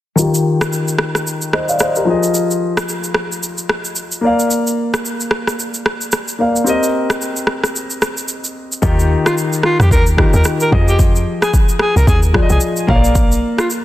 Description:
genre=afrobeats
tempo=111 BPM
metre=4/4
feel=swing 58% on 16ths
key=Eb major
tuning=A4 = 441 Hz
part: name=warm concert grand piano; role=accompaniment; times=0.2-13.8 s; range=Eb3 to F5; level=-17 LUFS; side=left 2 dB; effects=low-pass filter
part: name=afro-pop drum kit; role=drums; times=0.2-13.8 s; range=kick drum, rim click, shaker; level=-17 LUFS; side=equal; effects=overdrive
part: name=deep log drum bass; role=bass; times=8.8-13.4 s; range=Bb1 to F2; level=-14 LUFS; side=equal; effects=none
part: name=breathy alto saxophone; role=melody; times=9.3-13.7 s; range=F4 to Bb4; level=-19 LUFS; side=equal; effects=digital delay
room=light reverb, studio reverb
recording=dense, heavily limited modern master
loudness=-13 LUFS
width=side -14 dB against mid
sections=0.2-8.8 A section; 8.8-13.8 B section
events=filter sweep on grand piano 0.2-8.8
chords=0.2 Ebadd9; 2.1 Fm7; 4.2 Bb; 6.7 Cm7; 8.8 Ebadd9; 10.7 Fm7; 12.9 Bb

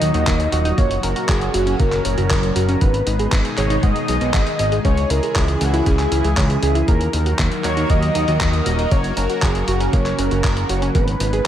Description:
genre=italo disco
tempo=118 BPM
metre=4/4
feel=straight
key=unclear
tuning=A4 = 441 Hz
part: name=wide unison lead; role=melody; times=0.0-11.5 s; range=F#4 to D#5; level=-23 LUFS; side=equal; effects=wide subtle chorus, diffuse ambient delay
part: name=lush unison pad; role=sustained chords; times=0.0-11.5 s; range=A#2 to B4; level=-24 LUFS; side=equal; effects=chorus, phaser
part: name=analog pluck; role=arpeggios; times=0.0-11.4 s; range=A#3 to D#5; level=-27 LUFS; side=right 2 dB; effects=chorus, tape echo
part: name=fat analog bass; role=bass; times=0.0-11.4 s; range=D#1 to G#2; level=-20 LUFS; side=equal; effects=tube saturation
part: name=dusty soul sampler-style drum kit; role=drums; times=0.0-11.4 s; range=handclaps, hi-hat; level=-26 LUFS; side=equal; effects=none
part: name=electronic kick drum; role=drums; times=0.3-11.1 s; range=none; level=-18 LUFS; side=equal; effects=none
room=moderate plate reverb, RT60 1.7 s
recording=dreamy mix soaked in reverb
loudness=-16 LUFS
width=side -10 dB against mid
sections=0.0-11.5 A section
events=none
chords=0.0 D#m; 0.8 F#; 2.8 G#m; 4.8 C#m; 6.9 D#m; 8.9 F#; 10.9 G#m

